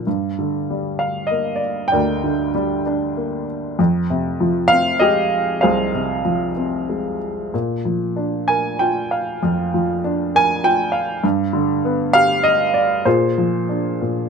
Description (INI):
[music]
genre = classical, lyrical solo piano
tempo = 97 BPM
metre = 3/4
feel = rubato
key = unclear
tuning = A4 = 441 Hz
[part]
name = warm baby grand piano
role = solo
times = 0.0-14.3 s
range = C2 to Ab5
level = -17 LUFS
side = equal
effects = none
[sound]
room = light reverb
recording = close, detailed microphones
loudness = -17 LUFS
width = side -6 dB against mid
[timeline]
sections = 0.1-14.3 A section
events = none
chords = 0.1 Gm; 3.8 Fmadd9; 7.5 Bb; 11.2 G; 13.1 Bb9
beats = | 0.06 0.69 1.30 | 1.92 2.55 3.17 | 3.79 4.40 5.00 | 5.62 6.25 6.88 | 7.54 8.18 8.80 | 9.43 10.04 10.64 | 11.24 11.84 12.45 | 13.06 13.69